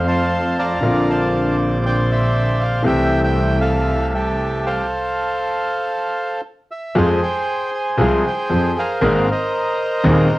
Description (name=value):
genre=tango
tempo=117 BPM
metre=4/4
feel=rubato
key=F major, F minor from 7.0 s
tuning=A4 = 440 Hz
part: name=bandoneon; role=melody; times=0.0-10.4 s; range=G4 to C6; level=-20 LUFS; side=right 1 dB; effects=cassette tape
part: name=clear concert grand piano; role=accompaniment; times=0.0-10.3 s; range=Eb1 to A4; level=-18 LUFS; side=left 1 dB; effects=cassette tape
part: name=bright double bass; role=bass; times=0.0-10.3 s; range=Ab1 to F2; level=-21 LUFS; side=right 1 dB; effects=none
room=moderate studio reverb, RT60 0.6 s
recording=home recording on cassette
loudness=-16 LUFS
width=side -18 dB against mid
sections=0.0-7.0 A section; 7.0-10.4 B section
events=stop 4.9-7.0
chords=0.0 F; 0.8 Bbadd9; 2.9 C6; 4.9 F; 7.0 Fm; 9.0 Abadd9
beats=0.32 | 0.83 1.34 1.85 2.35 | 2.86 3.36 3.87 4.38 | 4.89 5.40 5.92 6.43 | 6.96 7.48 8.00 8.51 | 9.03 9.54 10.05